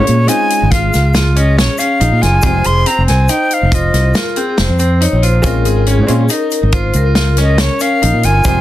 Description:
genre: progressive instrumental, band music in an uneven meter.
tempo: 140 BPM.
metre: 7/4.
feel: straight.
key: unclear.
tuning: A4 = 438 Hz.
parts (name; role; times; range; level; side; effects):
silver concert flute; melody; 0.0-8.6 s; Db5 to C6; -15 LUFS; equal; none.
vibraphone with medium hard mallets; second line; 0.0-8.6 s; Ab4 to Db5; -22 LUFS; left 4 dB; none.
hollow-body jazz guitar; accompaniment; 0.0-8.6 s; Ab3 to G4; -19 LUFS; left 2 dB; none.
bright grand piano; arpeggios; 0.0-8.6 s; C4 to Ab4; -20 LUFS; right 1 dB; digital delay.
fingered electric bass; bass; 0.0-8.6 s; F1 to Bb2; -12 LUFS; equal; none.
natural country drum kit; drums; 0.1-8.6 s; hi-hat, kick drum, snare drum; -17 LUFS; equal; none.
egg shaker; percussion; 0.3-8.6 s; none; -26 LUFS; left 6 dB; none.
room: light reverb.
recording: dense, heavily limited modern master.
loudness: -10 LUFS.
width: side -14 dB against mid.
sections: 0.0-8.6 A section.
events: flute solo 0.0-8.6.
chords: 0.0 Bbm7; 2.4 Fm7; 5.4 Bbm7.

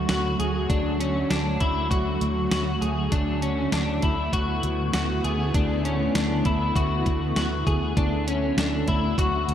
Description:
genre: dream pop.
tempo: 99 BPM.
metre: 4/4.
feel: straight.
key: D lydian.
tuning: A4 = 440 Hz.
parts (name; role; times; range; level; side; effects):
granular cloud pad; sustained chords; 0.0-9.5 s; D3 to F#4; -28 LUFS; equal; built-in reverb.
electric guitar at the edge of break-up; arpeggios; 0.0-9.5 s; C#4 to G#4; -26 LUFS; left 2 dB; ensemble chorus, slapback echo, tape echo.
vintage muted fingered electric bass; bass; 0.0-9.5 s; D2; -28 LUFS; equal; none.
clean 12-bit digital drum machine; drums; 0.1-9.5 s; hi-hat, kick drum, snare drum; -27 LUFS; equal; none.
room: wet concert hall reverb, RT60 2.1 s.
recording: big arena sound.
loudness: -22 LUFS.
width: side -9 dB against mid.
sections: 0.0-9.5 A section.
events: none.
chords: 0.0 D; 3.1 E7sus4/D; 8.0 D.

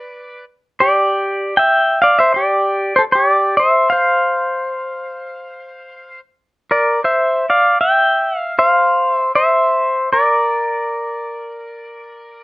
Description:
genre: hawaiian.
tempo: 77 BPM.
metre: 4/4.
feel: swing 59% on 8ths.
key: unclear.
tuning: A4 = 440 Hz.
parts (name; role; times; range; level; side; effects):
pedal steel guitar; solo; 0.0-12.4 s; G4 to G5; -14 LUFS; equal; none.
room: moderate small room reverb, RT60 0.6 s.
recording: rough home demo mix.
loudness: -13 LUFS.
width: side -21 dB against mid.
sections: 0.0-7.0 A section; 7.0-12.4 B section.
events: none.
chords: 0.0 Asus4 (rootless); 0.8 Cadd9; 3.9 F5; 10.1 N.C..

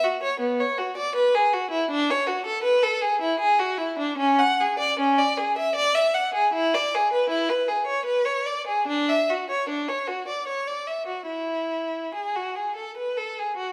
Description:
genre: classical, baroque-style suite movement for unaccompanied violin.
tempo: 77 BPM.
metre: 3/4.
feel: uneven beats, rubato.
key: unclear.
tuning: A4 = 439 Hz.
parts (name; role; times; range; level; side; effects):
rich violin; solo; 0.0-13.7 s; B3 to F#5; -24 LUFS; equal; none.
room: moderate recital hall reverb, RT60 1.6 s.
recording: none.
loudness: -24 LUFS.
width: mono.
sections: 0.0-13.7 A section.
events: none.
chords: none.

